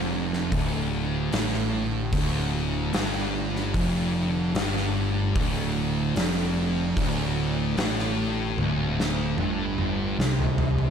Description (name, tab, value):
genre	stoner and doom metal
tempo	74 BPM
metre	4/4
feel	straight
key	D minor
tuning	A4 = 440 Hz
part	phased string machine	sustained chords	0.0-10.9 s	D3 to D4	-36 LUFS	equal	ensemble chorus, phaser
part	thick fuzz guitar	riff	0.0-10.9 s	D2 to C3	-29 LUFS	left 9 dB	distortion
part	thick fuzz guitar	riff	0.0-10.9 s	D2 to C3	-29 LUFS	right 9 dB	distortion
part	fuzz picked electric bass	bass	0.0-10.9 s	D1 to C2	-30 LUFS	equal	overdrive
part	oversized low-tuned drum kit	drums	0.3-10.9 s	hi-hat, kick drum, snare drum, toms	-29 LUFS	equal	none
room	light reverb, studio reverb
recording	none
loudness	-23 LUFS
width	side -7 dB against mid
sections	0.0-10.9 A section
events	drum fill 8.6-10.9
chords	0.0 Dm